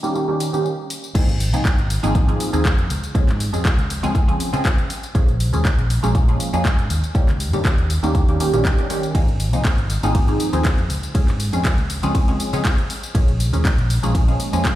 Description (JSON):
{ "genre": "filtered disco house", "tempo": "120 BPM", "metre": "4/4", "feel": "swing 53% on 16ths", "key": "Ab major", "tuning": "A4 = 439 Hz", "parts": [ { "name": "funky polysynth comp", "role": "accompaniment", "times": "0.0-14.7 s", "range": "Eb3 to Ab4", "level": "-23 LUFS", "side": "right 1 dB", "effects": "chorus, phaser, sidechain pumping, low-pass filter" }, { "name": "house drum kit", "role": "drums", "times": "0.0-14.8 s", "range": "crash cymbal, handclaps, hi-hat, ride cymbal, tambourine", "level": "-27 LUFS", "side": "left 1 dB", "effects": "sidechain pumping on perc, studio reverb, sidechain pumping on hats, sidechain pumping on cymbals" }, { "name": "fingered electric bass", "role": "bass", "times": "1.1-14.6 s", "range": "Ab1 to Db3", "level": "-21 LUFS", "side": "equal", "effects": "tube saturation, sidechain pumping, low-pass filter" }, { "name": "electronic kick drum", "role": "drums", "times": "1.1-14.8 s", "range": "none", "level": "-18 LUFS", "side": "equal", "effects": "studio reverb" } ], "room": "light reverb", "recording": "played on a big sound system in a bare room, stone room reverb", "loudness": "-16 LUFS", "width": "side -14 dB against mid", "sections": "0.0-1.2 A section; 1.2-14.8 B section", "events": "drop 1.2-14.8", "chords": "0.0 Eb7; 1.2 Ab69; 2.9 Dbmaj7; 5.2 Bbm7; 6.9 Eb7; 9.2 Ab69; 10.9 Dbmaj7; 13.2 Bbm7" }